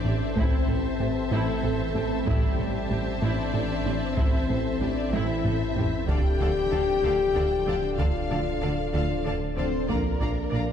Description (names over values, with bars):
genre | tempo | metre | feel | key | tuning
cinematic, hybrid orchestral and electronic film score | 63 BPM (dotted quarters) | 6/8 | straight | A phrygian | A4 = 440 Hz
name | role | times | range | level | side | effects
warm symphonic violin section | melody | 0.0-10.7 s | G4 to G5 | -36 LUFS | left 4 dB | none
clear symphonic violin section | second line | 0.0-10.6 s | E5 to Bb5 | -38 LUFS | left 2 dB | none
rich symphonic viola section | accompaniment | 0.0-10.6 s | E4 to D5 | -37 LUFS | right 1 dB | none
mellow French horn section | sustained chords | 0.0-10.7 s | G3 to G4 | -29 LUFS | left 4 dB | none
swarming drone | sustained chords | 0.0-10.7 s | E3 to E5 | -34 LUFS | right 1 dB | built-in reverb
warm trombone section | sustained chords | 0.0-10.7 s | E3 to D4 | -36 LUFS | right 3 dB | none
soft round pluck | arpeggios | 0.0-10.7 s | D3 to Bb4 | -39 LUFS | left 1 dB | none
rich symphonic cello section | bass | 0.0-10.6 s | A2 to D3 | -37 LUFS | right 2 dB | none
saturated sub bass | bass | 0.0-10.7 s | D1 to Bb1 | -34 LUFS | equal | none
plucky analog bass | riff | 0.1-10.7 s | D2 to Bb2 | -32 LUFS | right 1 dB | none
mellow tuba | bass | 0.1-10.7 s | A1 to D2 | -38 LUFS | right 1 dB | none
rich symphonic double bass section | bass | 0.1-10.6 s | A1 to D2 | -36 LUFS | right 2 dB | none
taiko ensemble | drums | 0.4-10.5 s | none | -28 LUFS | equal | none
room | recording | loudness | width
wet scoring stage reverb, RT60 1.8 s | heard from further back in the room | -23 LUFS | side -8 dB against mid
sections
0.0-10.7 A section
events
drum fill 5.1-6.1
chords
0.0 Am7; 6.1 Dm; 9.9 Bb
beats
| 0.36 1.32 | 2.27 3.22 | 4.17 5.13 | 6.08 7.03 | 7.98 8.94 | 9.89